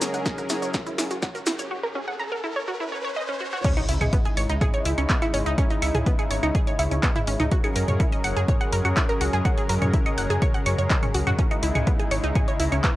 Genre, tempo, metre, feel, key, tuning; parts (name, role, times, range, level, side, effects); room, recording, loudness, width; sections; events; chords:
melodic techno; 124 BPM; 4/4; straight; C# minor; A4 = 440 Hz
lush unison pad; sustained chords; 0.0-13.0 s; C#3 to A#4; -30 LUFS; equal; chorus, sidechain pumping
wide unison pluck; arpeggios; 0.0-12.9 s; B3 to F#6; -28 LUFS; right 1 dB; sidechain pumping, analog delay
overtone-sweeping drone; drone; 0.0-13.0 s; C#3 to G#3; -37 LUFS; left 2 dB; chorus, built-in reverb, sidechain pumping
punchy analog drum machine; drums; 0.0-12.9 s; claves, crash cymbal, handclaps, hi-hat, snare drum, toms; -29 LUFS; equal; sidechain pumping on hats, sidechain pumping on cymbals, sidechain pumping on perc, sidechain pumping on toms
cabasa; percussion; 0.0-1.7 s; -33 LUFS; left 2 dB
riser, swell and impact; sound effects; 0.1-5.6 s; -33 LUFS; equal
electronic kick drum; drums; 0.3-12.9 s; -23 LUFS; equal
round analog bass; bass; 3.9-12.8 s; F#1 to F#2; -25 LUFS; equal; sidechain pumping
light reverb; dry, gritty hardware recording, cassette tape, high-pass filter; -21 LUFS; side -16 dB against mid
0.0-3.6 A section; 3.6-13.0 B section
build-up 0.0-3.6; drum fill 0.0-1.7; filter sweep on synth arpeggio sound 0.0-3.6; riser 0.1-3.6; break 1.7-3.6; swell 2.7-3.6; drop 3.6-13.0; impact 3.6-5.6
0.0 F#add9; 3.6 C#m; 7.5 F#add9; 11.4 C#m